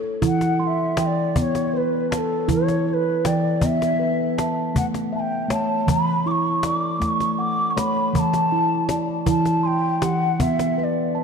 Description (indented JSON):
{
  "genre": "world meditative, meditative tuned percussion",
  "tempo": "53 BPM (dotted quarters)",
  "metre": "6/8",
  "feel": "straight",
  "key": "E dorian",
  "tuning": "A4 = 440 Hz",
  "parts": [
    { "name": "steel tongue drum", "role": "arpeggios", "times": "0.0-11.2 s", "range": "E3 to C6", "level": "-22 LUFS", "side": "right 1 dB", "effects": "diffuse ambient delay" },
    { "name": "cajon", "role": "percussion", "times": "0.0-10.8 s", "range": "none", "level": "-26 LUFS", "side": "left 2 dB", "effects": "none" },
    { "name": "mellow bansuri", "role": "melody", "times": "0.3-11.2 s", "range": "A4 to D6", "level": "-23 LUFS", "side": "equal", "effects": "diffuse ambient delay" }
  ],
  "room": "wet concert hall reverb, RT60 2.2 s",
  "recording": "dark, warm production",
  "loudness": "-19 LUFS",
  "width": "side -6 dB against mid",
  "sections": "0.2-11.2 A section",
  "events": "none",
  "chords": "0.2 Em; 4.8 A; 9.3 Em"
}